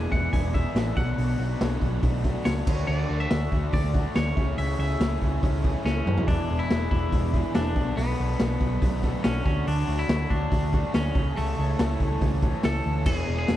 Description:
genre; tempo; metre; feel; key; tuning
indie rock; 141 BPM; 4/4; straight; E mixolydian; A4 = 440 Hz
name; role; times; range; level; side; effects
twangy electric guitar; melody; 0.0-13.6 s; A3 to G#5; -33 LUFS; equal; spring reverb, slapback echo
chorused pulse-width pad; sustained chords; 0.0-13.6 s; A3 to D6; -42 LUFS; equal; none
raw garage guitar; riff; 0.0-13.6 s; E2 to A4; -33 LUFS; left 7 dB; overdrive, spring reverb
thick fuzz guitar; riff; 0.0-13.6 s; B2 to C#5; -34 LUFS; right 7 dB; distortion, wide subtle chorus, slapback echo
hollow-body short-scale picked electric bass; bass; 0.0-13.6 s; E1 to F#2; -27 LUFS; equal; none
raw garage drum kit; drums; 0.1-13.6 s; crash cymbal, hi-hat, kick drum, snare drum, toms; -26 LUFS; equal; none
room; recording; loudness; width
little or no reverb; none; -22 LUFS; side -13 dB against mid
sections
0.0-6.3 A section; 6.3-13.6 A section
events
drum fill 5.9-6.3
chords
0.0 E7; 1.0 Bm7; 2.7 Dmaj7; 4.4 Amaj7/C#; 6.3 E7; 7.8 Bm7; 9.5 Dmaj7; 11.2 Amaj7/C#; 13.1 E7

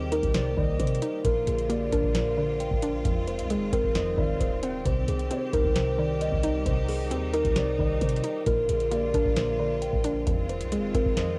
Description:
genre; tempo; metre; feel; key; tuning
hip hop, trap; 133 BPM; 4/4; half-time; C minor; A4 = 436 Hz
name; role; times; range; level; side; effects
kalimba; melody; 0.0-11.4 s; G4 to G5; -30 LUFS; equal; low-pass filter, cassette tape, analog delay
hollow square pluck; accompaniment; 0.0-11.4 s; F2 to Eb4; -34 LUFS; equal; chorus, low-pass filter, cassette tape
bright studio string section; sustained chords; 0.0-11.4 s; D3 to G4; -38 LUFS; equal; cassette tape
clean 808-style bass; bass; 0.0-11.2 s; Eb1 to C3; -34 LUFS; equal; none
booming analog drum machine; drums; 0.1-11.3 s; hi-hat, kick drum, snare drum; -31 LUFS; equal; cassette tape
gliding portamento lead; second line; 0.3-11.4 s; C5 to G5; -42 LUFS; equal; chorus, phaser, cassette tape, analog delay
room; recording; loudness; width
little or no reverb; home recording on cassette; -26 LUFS; mono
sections
0.0-11.4 A section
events
break 11.2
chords
0.0 Cm; 1.2 Bb; 3.1 Fm7; 4.9 Cm; 8.5 Bb; 10.3 Fm7

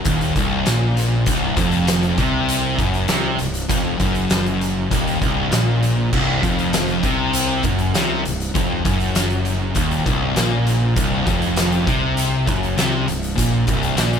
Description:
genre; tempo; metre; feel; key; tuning
stoner and doom metal; 99 BPM; 4/4; straight; C minor; A4 = 440 Hz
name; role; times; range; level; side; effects
fuzz guitar; riff; 0.0-14.2 s; C2 to C3; -24 LUFS; left 1 dB; distortion
thick fuzz guitar; riff; 0.0-14.2 s; C2 to C3; -22 LUFS; left 7 dB; distortion
thick fuzz guitar; riff; 0.0-14.2 s; C2 to C3; -23 LUFS; right 8 dB; distortion
oversized low-tuned drum kit; drums; 0.0-14.2 s; crash cymbal, hi-hat, kick drum, snare drum; -22 LUFS; equal; none
fuzz fingered electric bass; bass; 0.1-14.2 s; C1 to C2; -27 LUFS; equal; overdrive
room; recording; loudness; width
studio reverb; none; -16 LUFS; side -7 dB against mid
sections
0.0-14.2 A section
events
none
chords
0.0 Cm

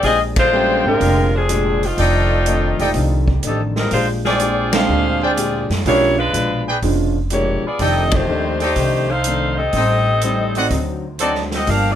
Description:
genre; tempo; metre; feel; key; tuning
jazz, big band swing; 124 BPM; 4/4; swing 68% on 8ths; F mixolydian; A4 = 440 Hz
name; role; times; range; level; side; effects
clear saxophone section; melody; 0.0-12.0 s; F3 to F5; -18 LUFS; left 1 dB; none
archtop guitar, miked and amplified; accompaniment; 0.0-12.0 s; F2 to G4; -25 LUFS; left 4 dB; none
upright bass; bass; 0.0-12.0 s; E1 to Gb2; -21 LUFS; equal; none
swinging big-band drum kit; drums; 0.0-11.8 s; hi-hat, kick drum, ride cymbal, snare drum; -24 LUFS; equal; none
warm baby grand piano; accompaniment; 0.5-10.7 s; G3 to G5; -23 LUFS; right 6 dB; none
warm trumpet section; stabs; 0.5-11.4 s; D4 to A5; -21 LUFS; equal; none
room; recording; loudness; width
moderate club reverb, RT60 0.7 s; none; -15 LUFS; side -10 dB against mid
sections
0.0-12.0 A section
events
band accent 0.3, 4.6, 8.0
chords
0.0 Bb13; 2.0 F13; 3.9 Bb13; 5.9 Bdim7; 7.8 F13; 9.7 Am7b5; 10.7 D7b9

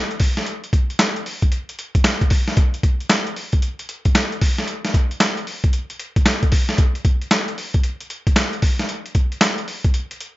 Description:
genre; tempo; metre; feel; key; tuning
R&B; 114 BPM; 4/4; swing 64% on 16ths; none; none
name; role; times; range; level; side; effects
boom bap sampler-style drum kit; drums; 0.1-10.4 s; handclaps, hi-hat, kick drum, snare drum; -17 LUFS; equal; none
room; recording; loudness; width
light reverb; nothing above 7.6 kHz; -17 LUFS; side -17 dB against mid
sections
0.0-10.4 A section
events
none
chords
none

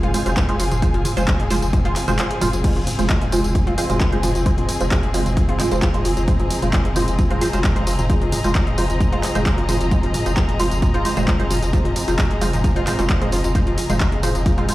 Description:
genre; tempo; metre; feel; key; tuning
driving peak-time techno; 132 BPM; 4/4; straight; F minor; A4 = 440 Hz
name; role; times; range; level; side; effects
analog pluck; riff; 0.0-14.7 s; F3 to F4; -26 LUFS; equal; chorus, sidechain pumping, dub echo
filtered dub chord stab; stabs; 0.0-14.7 s; Ab3 to C5; -25 LUFS; right 2 dB; phaser, ensemble chorus, sidechain pumping, digital delay
saturated sub bass; bass; 0.0-14.7 s; F1; -24 LUFS; equal; overdrive, sidechain pumping, low-pass filter
punchy analog drum machine; drums; 0.0-14.7 s; crash cymbal, handclaps, hi-hat, tambourine, toms; -25 LUFS; equal; none
muted studio string section; texture; 0.0-14.7 s; C4 to Bb5; -27 LUFS; left 2 dB; sidechain pumping
electronic kick drum; drums; 0.4-14.6 s; none; -20 LUFS; equal; overdrive
room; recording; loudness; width
light reverb, digital ambience; played on a big sound system in a bare room, large studio reverb; -16 LUFS; side -17 dB against mid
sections
0.0-14.7 A section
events
kick drops out 2.2-2.6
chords
0.0 Fm

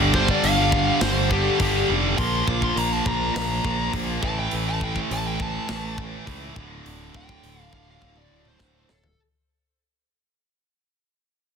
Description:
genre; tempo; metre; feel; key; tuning
heavy metal; 103 BPM; 4/4; straight; D minor; A4 = 441 Hz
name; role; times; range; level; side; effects
heavy high-gain guitar; riff; 0.0-8.9 s; D2 to Bb3; -26 LUFS; right 14 dB; distortion
scooped high-gain guitar; riff; 0.0-8.9 s; D2 to Bb3; -28 LUFS; left 17 dB; distortion
modern bright picked electric bass; bass; 0.0-9.1 s; D1 to C#2; -28 LUFS; left 1 dB; none
tight metal drum kit; drums; 0.1-9.2 s; hi-hat, kick drum, snare drum, toms; -29 LUFS; left 1 dB; soft clipping on kick, soft clipping on snare
high-gain lead guitar; melody; 0.2-9.2 s; G4 to D6; -26 LUFS; left 3 dB; distortion
room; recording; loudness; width
light reverb; dense, heavily limited modern master; -20 LUFS; side -6 dB against mid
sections
0.0-9.2 A section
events
fade-out 0.0-9.2; lead electric guitar solo 0.0-9.2; drum fill 8.0-9.2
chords
0.0 G5; 2.2 Bb5; 4.2 A5; 6.6 D5

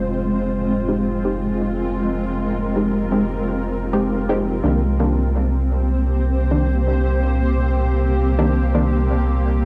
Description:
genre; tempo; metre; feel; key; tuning
techno; 128 BPM; 4/4; swing 54% on 16ths; F minor; A4 = 440 Hz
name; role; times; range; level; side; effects
granular cloud pad; sustained chords; 0.0-9.7 s; Ab3 to C5; -24 LUFS; equal; built-in reverb, cassette tape
pure sine sub bass; bass; 0.0-9.7 s; F1 to C2; -23 LUFS; equal; none
filtered dub chord stab; stabs; 0.9-9.0 s; Eb3 to G4; -26 LUFS; equal; chorus, phaser, cassette tape, dub echo
room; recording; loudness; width
light reverb; home recording on cassette; -20 LUFS; mono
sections
0.0-9.7 A section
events
none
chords
0.0 Fm7; 4.6 Cm7

